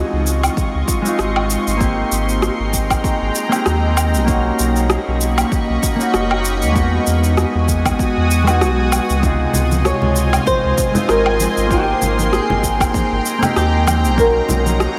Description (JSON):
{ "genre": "sunset chillout", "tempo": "97 BPM", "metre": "4/4", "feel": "swing 55% on 16ths", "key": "Db lydian", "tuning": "A4 = 439 Hz", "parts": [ { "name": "mellow electric guitar", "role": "accompaniment", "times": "0.0-15.0 s", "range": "C3 to G5", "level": "-22 LUFS", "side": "equal", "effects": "analog delay" }, { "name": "shimmering ambient pad", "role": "sustained chords", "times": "0.0-15.0 s", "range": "Ab3 to D#6", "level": "-26 LUFS", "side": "equal", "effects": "chorus, built-in reverb" }, { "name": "warm sub bass", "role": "bass", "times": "0.0-14.9 s", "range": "Gb1 to Fb2", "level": "-21 LUFS", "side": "equal", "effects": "none" }, { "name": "electronic cabasa, woodblock and rim click", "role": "drums", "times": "0.3-14.9 s", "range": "none", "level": "-24 LUFS", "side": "equal", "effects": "overdrive" }, { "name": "electronic kick drum", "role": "drums", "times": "0.6-14.3 s", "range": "none", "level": "-22 LUFS", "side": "equal", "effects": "overdrive" }, { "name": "congas", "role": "percussion", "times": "9.5-14.8 s", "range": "none", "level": "-27 LUFS", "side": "equal", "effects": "none" }, { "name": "flamenco guitar", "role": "melody", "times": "9.9-15.0 s", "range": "G4 to Db5", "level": "-21 LUFS", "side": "equal", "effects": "analog chorus, analog delay" } ], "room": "wet huge ambient reverb, RT60 8.5 s", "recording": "dreamy mix soaked in reverb", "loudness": "-16 LUFS", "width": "mono", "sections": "0.0-15.0 A section", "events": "none", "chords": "0.0 Dbmaj9; 1.8 Abmaj9; 4.3 Cbmaj9; 6.8 Emaj9; 9.2 Dbmaj9; 11.7 Abmaj9; 14.2 Cbmaj9", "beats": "0.57 1.19 | 1.81 2.43 3.05 3.67 | 4.28 4.90 5.52 6.14 | 6.76 7.38 8.00 8.61 | 9.23 9.85 10.47 11.09 | 11.71 12.32 12.94 13.56 | 14.18 14.80" }